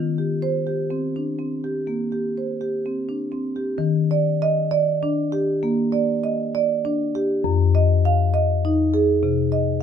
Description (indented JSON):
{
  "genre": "classical, contemporary piece for solo marimba",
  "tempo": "61-68 BPM",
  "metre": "4/4",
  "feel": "rubato",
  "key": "Eb major",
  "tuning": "A4 = 441 Hz",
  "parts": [
    { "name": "marimba with soft mallets", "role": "solo", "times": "0.0-9.8 s", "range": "F2 to F5", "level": "-19 LUFS", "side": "left 1 dB", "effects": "none" }
  ],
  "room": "light reverb",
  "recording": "minimal, uncompressed stereo recording",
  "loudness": "-19 LUFS",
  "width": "side -8 dB against mid",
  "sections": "0.0-3.8 A section; 3.8-9.8 B section",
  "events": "none",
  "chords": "0.0 Eb6; 3.8 Ebmaj7; 7.4 Fm7"
}